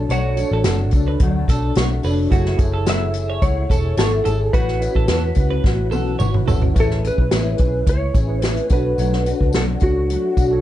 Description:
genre	indie pop, bedroom pop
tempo	108 BPM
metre	4/4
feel	straight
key	A major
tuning	A4 = 439 Hz
part	clean lap steel guitar	melody	0.0-10.6 s	F#4 to E5	-24 LUFS	equal	ensemble chorus, analog delay
part	fingerpicked steel-string acoustic guitar	accompaniment	0.0-10.6 s	B2 to B4	-26 LUFS	left 4 dB	ensemble chorus, vibrato effect
part	mellow tine electric piano	accompaniment	0.0-10.6 s	D4 to C#5	-29 LUFS	right 3 dB	medium stereo tremolo
part	vintage muted picked electric bass	bass	0.0-10.6 s	E1 to E2	-21 LUFS	equal	none
part	twelve-string electric guitar	second line	0.1-6.6 s	F#4 to C#5	-28 LUFS	right 5 dB	lush chorus, analog delay
part	unplugged drum kit	drums	0.1-10.5 s	hi-hat, kick drum, snare drum, toms	-19 LUFS	equal	none
part	tambourine	percussion	0.1-10.5 s	none	-42 LUFS	left 8 dB	none
room	moderate small room reverb, RT60 0.5 s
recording	dark, warm production, nothing above 10.3 kHz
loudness	-16 LUFS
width	side -13 dB against mid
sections	0.0-6.8 A section; 6.8-10.6 B section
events	drum fill 5.6-6.8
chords	0.0 Bm7; 2.3 F#m9; 4.5 A69; 6.8 Amaj7; 8.7 Bm7

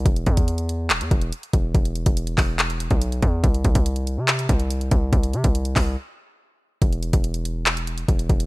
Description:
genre	hip hop, trap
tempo	142 BPM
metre	4/4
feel	half-time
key	unclear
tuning	A4 = 439 Hz
part	distorted 808-style bass	bass	0.0-8.5 s	D#1 to C3	-23 LUFS	equal	distortion
part	trap drum kit	drums	0.1-8.5 s	handclaps, hi-hat, kick drum	-20 LUFS	equal	none
room	digital ambience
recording	none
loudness	-19 LUFS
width	side -21 dB against mid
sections	0.0-6.8 A section; 6.8-8.5 B section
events	break 6.0-6.8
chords	none

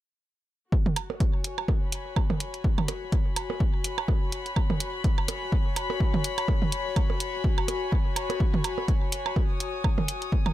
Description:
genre	minimal techno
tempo	125 BPM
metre	4/4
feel	swing 57% on 16ths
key	unclear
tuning	A4 = 440 Hz
part	electronic kick drum	drums	0.7-10.4 s	none	-25 LUFS	equal	none
part	warm studio string section	texture	0.7-10.5 s	F#4 to D#6	-33 LUFS	left 4 dB	sidechain pumping
part	electronic toms and percussion blips	percussion	0.9-10.5 s	none	-31 LUFS	right 6 dB	tape echo
part	electronic hi-hat	drums	1.0-10.3 s	none	-31 LUFS	equal	none
room	light reverb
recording	none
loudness	-24 LUFS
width	side -14 dB against mid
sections	0.7-10.5 A section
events	none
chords	0.7 F#sus4

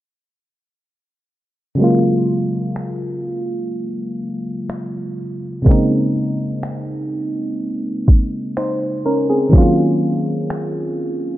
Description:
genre	contemporary R&B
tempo	62 BPM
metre	4/4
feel	straight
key	unclear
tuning	A4 = 439 Hz
part	FM electric piano	accompaniment	1.8-11.4 s	C3 to C5	-18 LUFS	equal	chorus
part	smooth R&B drum kit	drums	2.8-10.7 s	finger snaps, kick drum	-12 LUFS	equal	none
room	light reverb, digital ambience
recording	low-pass filter, lossy compression artefacts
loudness	-16 LUFS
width	side -15 dB against mid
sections	1.8-11.4 A section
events	filter sweep 1.8-11.4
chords	1.8 Gbmaj9; 5.7 Bbm11; 9.5 Ebm9

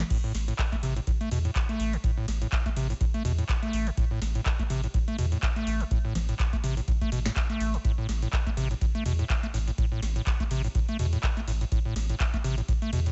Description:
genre	acid house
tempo	124 BPM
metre	4/4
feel	swing 56% on 16ths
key	A minor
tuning	A4 = 441 Hz
part	acid bass, square	riff	0.0-13.1 s	A2 to A3	-34 LUFS	equal	overdrive
part	round analog bass	bass	0.0-13.1 s	A1 to E2	-31 LUFS	equal	sidechain pumping
part	booming analog drum machine	drums	0.0-13.1 s	congas, crash cymbal, handclaps, hi-hat, ride cymbal, snare drum	-39 LUFS	equal	none
part	electronic kick drum	drums	0.1-12.8 s	none	-30 LUFS	equal	none
room	little or no reverb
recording	nothing above 8.0 kHz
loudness	-28 LUFS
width	mono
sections	0.0-13.1 A section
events	none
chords	none

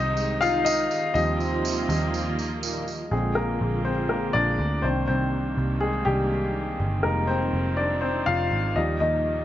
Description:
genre	piano-driven pop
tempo	122 BPM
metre	4/4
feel	straight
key	Eb major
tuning	A4 = 440 Hz
part	warm French horn section	second line	0.0-2.9 s	Bb2 to F4	-32 LUFS	right 5 dB	none
part	warm upright piano	accompaniment	0.0-9.4 s	D3 to F5	-24 LUFS	left 2 dB	none
part	warm studio string section	sustained chords	0.0-9.4 s	Bb2 to F4	-32 LUFS	right 2 dB	none
part	vintage muted picked electric bass	bass	0.0-9.4 s	F1 to Eb2	-28 LUFS	equal	none
part	tambourine	percussion	0.2-3.0 s	none	-35 LUFS	right 6 dB	none
room	light reverb, small room reverb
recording	nothing above 7.5 kHz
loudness	-22 LUFS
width	side -12 dB against mid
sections	0.0-3.1 A section; 3.1-9.4 B section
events	upright piano solo 0.0-3.1, 3.1-9.4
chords	0.0 Ab/C; 1.2 Ebadd9; 3.1 Bb7; 4.8 Cm7; 7.0 Fm7; 8.8 Ebmaj7

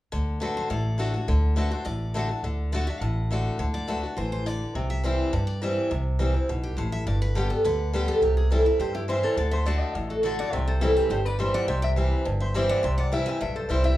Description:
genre	bluegrass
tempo	208 BPM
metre	4/4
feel	straight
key	D mixolydian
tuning	A4 = 440 Hz
part	picked steel-string acoustic guitar	accompaniment	0.1-14.0 s	G2 to G4	-28 LUFS	left 1 dB	none
part	upright bass	bass	0.1-13.9 s	G1 to G2	-26 LUFS	equal	none
part	picked steel-string acoustic guitar	melody	0.4-14.0 s	G4 to G#5	-29 LUFS	right 1 dB	none
part	lap resonator guitar	second line	8.8-14.0 s	E4 to E5	-30 LUFS	left 2 dB	none
room	moderate large studio reverb, RT60 0.8 s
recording	band playing live in one room, tape saturation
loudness	-23 LUFS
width	side -14 dB against mid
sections	0.1-14.0 A section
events	none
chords	0.1 D; 4.8 C; 7.1 G; 8.2 C; 9.4 D; 10.5 C

